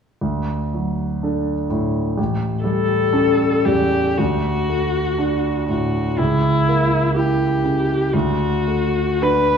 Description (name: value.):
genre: classical, romantic duo for viola and grand piano.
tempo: 53-63 BPM.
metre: 4/4.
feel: rubato.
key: D major.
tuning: A4 = 440 Hz.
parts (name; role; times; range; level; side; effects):
clear grand piano; accompaniment; 0.2-9.6 s; A1 to A4; -19 LUFS; right 1 dB; none.
rich viola; melody; 2.6-9.6 s; E4 to B4; -20 LUFS; left 3 dB; none.
room: wet recital hall reverb, RT60 1.4 s.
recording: worn, warbling old tape, cassette tape, warbly pitch drift, small room ambience.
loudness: -17 LUFS.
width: side -7 dB against mid.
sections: 0.2-4.2 A section; 4.2-9.6 B section.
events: none.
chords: 0.2 D; 2.2 A7; 4.2 D; 6.2 C#dim7; 8.1 D.